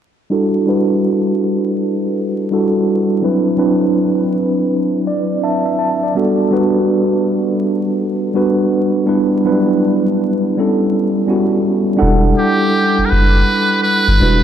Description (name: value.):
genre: hip hop.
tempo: 82 BPM.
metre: 4/4.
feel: swing 63% on 16ths.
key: E minor.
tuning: A4 = 442 Hz.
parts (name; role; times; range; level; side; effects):
mellow tine electric piano; accompaniment; 0.3-14.4 s; F#3 to A5; -14 LUFS; right 1 dB; medium stereo tremolo, cassette tape, low-pass filter.
saturated sub bass; bass; 12.0-14.4 s; E1 to G1; -13 LUFS; equal; none.
trumpet with metal mute; melody; 12.4-14.4 s; G4 to B4; -15 LUFS; right 1 dB; low-pass filter.
room: wet huge ambient reverb, RT60 4.9 s.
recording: dreamy mix soaked in reverb, vinyl crackle.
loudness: -13 LUFS.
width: side -9 dB against mid.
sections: 0.3-12.0 A section; 12.0-14.4 B section.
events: filter sweep on tine electric piano 0.3-12.0; tine electric piano fill 4.7-6.2.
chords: 0.3 Em11; 3.2 D13; 6.2 Gmaj9; 9.1 Em7; 10.5 A9; 12.0 Em11.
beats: | 0.30 1.03 1.76 2.49 | 3.22 3.96 4.69 5.42 | 6.15 6.88 7.62 8.35 | 9.08 9.81 10.54 11.27 | 12.01 12.74 13.47 14.20.